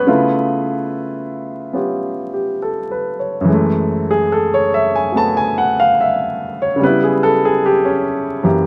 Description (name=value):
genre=solo jazz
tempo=72 BPM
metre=4/4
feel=swing 67% on 8ths, rubato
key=F# minor from 3.5 s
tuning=A4 = 440 Hz
part: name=warm baby grand piano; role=solo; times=0.0-8.7 s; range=F#2 to A5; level=-17 LUFS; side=equal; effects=none
room=wet spring reverb, RT60 1.3 s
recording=vinyl crackle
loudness=-17 LUFS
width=mono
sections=0.0-3.5 A section; 3.5-8.7 B section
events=grand piano solo 3.5-8.7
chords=0.1 Db7alt; 3.5 F#m9; 6.8 C#m7b5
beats=| 0.08 0.91 1.76 2.63 | 3.48 4.31 5.15 5.98 | 6.82 7.63 8.45